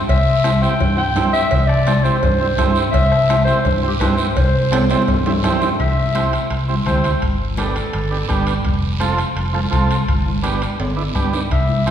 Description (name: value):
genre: latin, cumbia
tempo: 168 BPM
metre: 4/4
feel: straight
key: C major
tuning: A4 = 440 Hz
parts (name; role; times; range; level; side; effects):
- fingered electric bass; bass; 0.0-11.9 s; F1 to G2; -20 LUFS; left 1 dB; none
- growling clarinet; second line; 0.1-8.5, 11.5-11.8 s; G4 to G5; -20 LUFS; left 1 dB; none
- bombo; percussion; 0.1-11.9 s; none; -23 LUFS; left 1 dB; none
- congas; percussion; 0.1-11.9 s; none; -25 LUFS; right 1 dB; none
- cowbell and timbales; percussion; 0.1-11.9 s; none; -27 LUFS; right 2 dB; none
- guiro; percussion; 0.1-11.9 s; none; -31 LUFS; right 5 dB; none
- overdriven combo organ; accompaniment; 0.4-11.9 s; B3 to A4; -22 LUFS; right 3 dB; none
room: wet concert hall reverb, RT60 2.0 s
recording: recorded in a church or concert hall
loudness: -15 LUFS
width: side -9 dB against mid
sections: 0.0-5.8 A section; 5.8-11.9 B section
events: clarinet solo 0.0-5.8, 5.8-11.9; drum fill 4.7-5.8, 10.8-11.5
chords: 0.0 C; 7.2 G; 8.7 F; 10.1 G